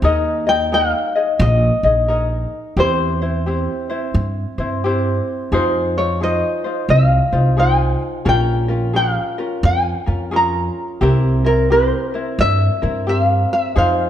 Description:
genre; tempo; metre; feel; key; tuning
Hawaiian; 87 BPM; 4/4; swing 64% on 8ths; unclear; A4 = 440 Hz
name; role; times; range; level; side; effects
ukulele; accompaniment; 0.0-14.1 s; C4 to Eb5; -20 LUFS; left 1 dB; none
upright bass; bass; 0.0-14.1 s; Bb1 to G2; -18 LUFS; equal; none
tenor ukulele; melody; 0.5-14.1 s; Bb4 to Bb5; -19 LUFS; left 1 dB; none
room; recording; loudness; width
moderate recital hall reverb, RT60 1.6 s; dark, warm production; -15 LUFS; side -10 dB against mid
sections
0.0-14.1 A section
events
none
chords
0.0 Ebsus4; 2.8 C/E; 5.5 Fm7; 8.3 Bbm7; 11.0 C7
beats
| 0.04 0.72 1.41 2.09 | 2.78 3.46 4.15 4.84 | 5.52 6.21 6.90 7.59 | 8.27 8.96 9.65 10.33 | 11.02 11.71 12.39 13.08 | 13.77

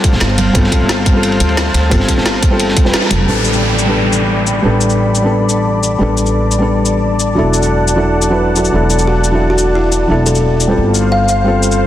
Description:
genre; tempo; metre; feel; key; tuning
liquid drum and bass; 176 BPM; 4/4; straight; A minor; A4 = 441 Hz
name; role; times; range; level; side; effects
felt-muted upright piano; accompaniment; 0.0-11.9 s; F#3 to B4; -15 LUFS; left 1 dB; low-pass filter, tape echo
warm analog pad; sustained chords; 0.0-11.9 s; C5 to B5; -20 LUFS; left 1 dB; chorus, sidechain pumping
crunchy breakbeat drum kit; drums; 0.0-3.2 s; ride cymbal, snare drum; -23 LUFS; equal; high-pass filter on cymbals, high-pass filter on snare, high-pass filter on room
drum and bass drum kit; drums; 0.0-11.8 s; cabasa, hi-hat, snare drum; -19 LUFS; left 2 dB; none
electronic kick drum; drums; 0.0-2.8 s; none; -12 LUFS; equal; none
upright bass; bass; 0.1-11.9 s; E1 to D2; -16 LUFS; equal; none
congas; percussion; 0.4-0.5, 3.1-3.2 s; none; -21 LUFS; right 3 dB; none
downlifter; sound effects; 3.3-6.0 s; none; -20 LUFS; equal; none
buzzing kalimba; melody; 9.1-11.5 s; E4 to F5; -17 LUFS; left 1 dB; tape echo
room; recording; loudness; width
moderate lush hall reverb, RT60 2.0 s; dense, heavily limited modern master; -10 LUFS; side -12 dB against mid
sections
0.0-3.3 A section; 3.3-11.9 B section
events
band accent 2.9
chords
0.0 G9sus4; 3.3 A9sus4; 7.4 E9sus4; 10.8 G9sus4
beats
0.21 | 0.55 0.89 1.23 1.57 | 1.92 2.26 2.60 2.94 | 3.28 3.62 3.96 4.30 | 4.64 4.98 5.32 5.67 | 6.01 6.35 6.69 7.03 | 7.37 7.71 8.05 8.39 | 8.73 9.07 9.41 9.76 | 10.10 10.44 10.78 11.12 | 11.46 11.80

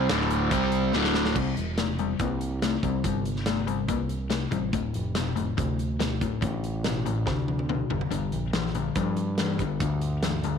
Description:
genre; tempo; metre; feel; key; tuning
classic rock; 142 BPM; 4/4; straight; unclear; A4 = 442 Hz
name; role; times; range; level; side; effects
cranked stack guitar; riff; 0.0-1.4 s; D2 to C4; -27 LUFS; right 15 dB; overdrive
crunchy overdriven guitar; riff; 0.0-10.6 s; D2 to C4; -28 LUFS; left 8 dB; phaser
growling picked electric bass; bass; 0.0-10.6 s; D1 to G2; -30 LUFS; right 3 dB; overdrive
big rock drum kit; drums; 0.1-10.5 s; crash cymbal, hi-hat, kick drum, snare drum, toms; -32 LUFS; right 2 dB; none
room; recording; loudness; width
small room ambience; 1960s-style stereo with parts hard left and right; -24 LUFS; side -7 dB against mid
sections
0.0-1.4 A section; 1.4-10.6 B section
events
drum fill 0.9-1.4, 7.3-8.1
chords
0.1 D5; 0.5 C5; 0.9 D5; 1.4 C; 4.7 Dm; 7.9 Gm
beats
0.09 0.52 0.94 | 1.36 1.78 2.20 2.62 | 3.04 3.47 3.89 4.31 | 4.74 5.16 5.58 6.00 | 6.42 6.85 7.27 7.69 | 8.12 8.54 8.96 9.38 | 9.81 10.23

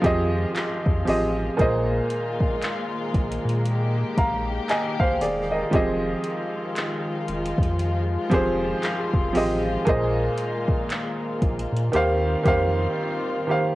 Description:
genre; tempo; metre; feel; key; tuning
contemporary R&B; 58 BPM; 4/4; swing 58% on 16ths; F minor; A4 = 440 Hz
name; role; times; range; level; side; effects
clear concert grand piano; accompaniment; 0.0-13.8 s; Bb2 to Bb5; -24 LUFS; right 1 dB; cassette tape
warm studio string section; sustained chords; 0.0-13.8 s; Eb3 to G4; -30 LUFS; left 2 dB; cassette tape
rubbery square bass; bass; 0.0-12.9 s; E1 to Bb2; -27 LUFS; equal; none
smooth R&B drum kit; drums; 0.0-12.7 s; handclaps, hi-hat, kick drum; -25 LUFS; equal; none
room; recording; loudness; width
light reverb, digital ambience; home recording on cassette; -21 LUFS; side -17 dB against mid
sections
0.0-13.8 A section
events
break 13.0-13.8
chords
0.0 Fm9; 1.6 Bb7sus4; 5.7 Fm9; 9.9 Bb7sus4; 11.9 Eb69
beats
0.56 | 1.59 2.63 3.66 4.70 | 5.73 6.76 7.80 8.83 | 9.87 10.90 11.94 12.97

